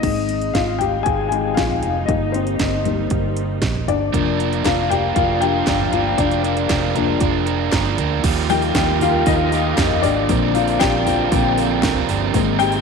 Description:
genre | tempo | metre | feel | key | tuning
piano-driven pop | 117 BPM | 4/4 | straight | Eb major | A4 = 439 Hz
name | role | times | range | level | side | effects
dark upright piano | accompaniment | 0.0-12.8 s | D3 to Ab5 | -20 LUFS | left 9 dB | none
warm studio string section | sustained chords | 0.0-12.8 s | D3 to Bb4 | -29 LUFS | right 11 dB | none
vintage muted fingered electric bass | bass | 0.0-12.8 s | F1 to F2 | -24 LUFS | right 2 dB | none
house drum kit | drums | 0.0-12.8 s | crash cymbal, hi-hat, kick drum, snare drum, toms | -23 LUFS | right 3 dB | none
overdriven semi-hollow guitar | riff | 4.1-12.8 s | Bb2 to Bb4 | -22 LUFS | right 14 dB | none
group handclap | percussion | 4.7-11.9 s | none | -36 LUFS | left 9 dB | none
room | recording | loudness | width
moderate echo chamber reverb, RT60 2.3 s | 1960s-style stereo with parts hard left and right | -16 LUFS | side -5 dB against mid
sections
0.0-8.2 A section; 8.2-12.8 B section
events
upright piano solo 0.0-8.2, 8.2-12.8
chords
0.0 Ab; 2.1 Eb/G; 4.1 Bb/F; 8.2 Ebadd9; 10.3 Bbadd9

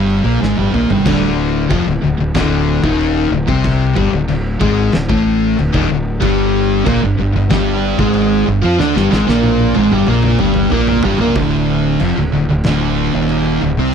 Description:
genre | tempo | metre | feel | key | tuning
stoner and doom metal | 93 BPM | 4/4 | straight | D phrygian | A4 = 439 Hz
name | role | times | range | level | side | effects
thick fuzz guitar | riff | 0.0-13.9 s | D2 to F4 | -17 LUFS | left 9 dB | distortion
thick fuzz guitar | riff | 0.0-1.1, 6.2-13.9 s | D2 to F4 | -17 LUFS | right 11 dB | distortion
fuzz fingered electric bass | bass | 0.0-13.9 s | D1 to F2 | -19 LUFS | equal | overdrive
oversized low-tuned drum kit | drums | 0.1-13.4 s | crash cymbal, kick drum, snare drum, toms | -22 LUFS | equal | none
overdriven electric guitar | riff | 1.1-11.4 s | D2 to F4 | -19 LUFS | equal | none
room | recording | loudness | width
light reverb | dry, close 1970s-style studio recording | -12 LUFS | side -7 dB against mid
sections
0.0-1.1 A section; 1.1-11.4 B section; 11.4-13.9 C section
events
drum fill 0.4-1.1, 8.8-11.4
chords
0.0 G5; 1.1 Dm; 6.2 G5; 11.4 Dm

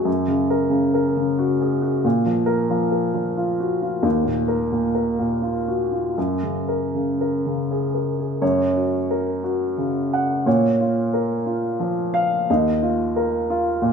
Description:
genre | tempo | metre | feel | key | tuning
neoclassical minimalist piano | 78-92 BPM | 3/4 | rubato | F# major | A4 = 439 Hz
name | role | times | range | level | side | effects
warm upright piano | solo | 0.0-13.9 s | D#2 to F#5 | -19 LUFS | equal | none
room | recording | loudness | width
moderate scoring stage reverb, RT60 1.6 s | minimal, uncompressed stereo recording | -19 LUFS | side -6 dB against mid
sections
0.0-8.4 A section; 8.4-13.9 B section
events
none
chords
0.1 F#; 2.0 A#5; 4.0 D#sus2; 6.2 F#add9; 8.4 F#; 10.5 A#m; 12.5 D#sus2

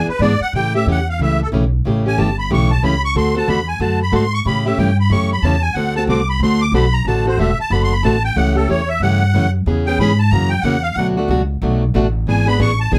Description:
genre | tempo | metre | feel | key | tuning
acoustic string swing (jazz manouche) | 184 BPM | 4/4 | swing 61% on 8ths | A mixolydian | A4 = 440 Hz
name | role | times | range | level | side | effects
musette accordion | melody | 0.0-13.0 s | A4 to D6 | -23 LUFS | equal | none
picked plugged-in steel-string acoustic guitar | accompaniment | 0.0-13.0 s | B2 to A4 | -21 LUFS | equal | none
upright bass | bass | 0.0-13.0 s | E1 to A2 | -20 LUFS | equal | none
room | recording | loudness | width
little or no reverb | close, detailed microphones | -16 LUFS | mono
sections
0.5-13.0 A section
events
accordion solo 0.0-13.0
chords
0.0 E7; 0.5 A7; 3.1 D7; 4.5 A7; 5.8 D7; 8.4 A7; 9.7 C#m7; 10.3 F#7; 11.0 Bm7; 12.3 E7

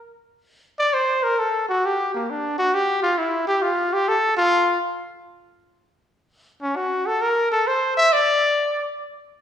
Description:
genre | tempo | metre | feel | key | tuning
jazz | 134 BPM | 4/4 | swing 67% on 8ths | F major | A4 = 440 Hz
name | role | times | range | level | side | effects
clear trumpet | solo | 0.8-8.9 s | Bb3 to E5 | -18 LUFS | equal | none
room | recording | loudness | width
wet recital hall reverb, RT60 1.4 s | recorded in a church or concert hall | -18 LUFS | side -9 dB against mid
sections
0.0-9.4 A section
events
trumpet solo 0.0-9.4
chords
none

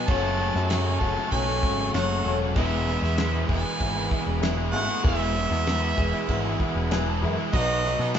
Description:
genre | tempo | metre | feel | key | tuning
classic rock | 97 BPM | 4/4 | straight | E major | A4 = 435 Hz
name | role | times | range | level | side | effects
clear harmonica | melody | 0.0-8.1 s | D#5 to A5 | -30 LUFS | right 2 dB | none
smooth overdriven lead guitar | second line | 0.0-8.1 s | F#3 to C#4 | -34 LUFS | equal | none
dark upright piano | accompaniment | 0.0-8.2 s | F#4 to B5 | -33 LUFS | left 3 dB | none
tonewheel organ | sustained chords | 0.0-8.2 s | B3 to C#5 | -39 LUFS | equal | none
distorted electric guitar | riff | 0.0-8.2 s | E2 to G#4 | -33 LUFS | right 5 dB | distortion
overdriven electric guitar | riff | 0.0-8.2 s | F#2 to E4 | -33 LUFS | left 7 dB | none
overdriven semi-hollow guitar | riff | 0.0-8.2 s | F#2 to E4 | -33 LUFS | right 1 dB | none
growling picked electric bass | bass | 0.1-8.2 s | E1 to B2 | -28 LUFS | equal | overdrive
damped 70s drum kit | drums | 0.1-8.2 s | crash cymbal, kick drum, snare drum | -29 LUFS | equal | none
room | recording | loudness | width
moderate stone room reverb, RT60 1.3 s | band playing live in one room, nothing above 7.7 kHz | -22 LUFS | side -8 dB against mid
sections
0.0-8.2 A section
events
upright piano fill 5.7-7.5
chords
0.1 F#m; 2.6 E; 7.5 B

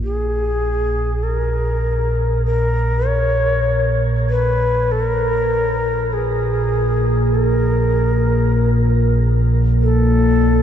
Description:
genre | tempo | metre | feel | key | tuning
dark ambient drone | 49 BPM | 4/4 | straight | Bb phrygian | A4 = 440 Hz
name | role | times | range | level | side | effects
mellow shakuhachi | melody | 0.0-10.6 s | Ab4 to Db5 | -20 LUFS | equal | shimmer reverb, diffuse ambient delay
analog drone | drone | 0.0-10.6 s | Bb1 to Bb2 | -17 LUFS | equal | chorus
room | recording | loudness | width
moderate huge ambient reverb, RT60 8.8 s | cassette tape, nothing above 8.0 kHz | -15 LUFS | side -9 dB against mid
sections
0.0-10.6 A section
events
filter sweep on synth drone 0.0-10.6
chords
none

